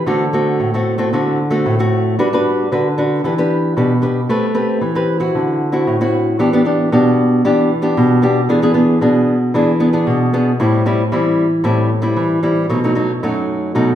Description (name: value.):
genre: samba.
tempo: 114 BPM.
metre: 4/4.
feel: straight.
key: E minor from 6.4 s.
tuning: A4 = 440 Hz.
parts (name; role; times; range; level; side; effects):
nylon-string guitar; solo; 0.0-13.9 s; F#2 to B4; -13 LUFS; equal; none.
room: wet large studio reverb, RT60 1.4 s.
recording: band playing live in one room.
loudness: -13 LUFS.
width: side -11 dB against mid.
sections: 0.0-6.4 A section; 6.4-13.9 B section.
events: none.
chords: 0.1 D7; 2.2 Gmaj7; 3.2 Em7; 4.3 Am9; 5.3 D9; 6.4 Em7; 8.5 E7; 10.6 Am7; 12.7 B7.